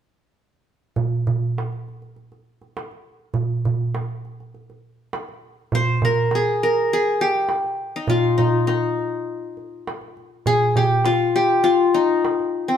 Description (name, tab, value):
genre	Turkish makam ensemble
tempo	101 BPM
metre	4/4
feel	straight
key	unclear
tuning	A4 = 441 Hz
part	darbuka	percussion	1.0-12.5 s	none	-23 LUFS	right 3 dB	none
part	qanun	melody	5.7-12.8 s	C4 to C5	-18 LUFS	left 2 dB	none
room	wet stone room reverb, RT60 1.2 s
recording	band playing live in one room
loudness	-18 LUFS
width	side -8 dB against mid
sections	1.0-5.7 A section; 5.7-12.8 B section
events	none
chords	none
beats	| 0.98 1.57 2.16 2.75 | 3.35 3.94 4.53 5.12 | 5.72 6.31 6.90 7.49 | 8.09 8.68 9.27 9.86 | 10.46 11.05 11.64 12.23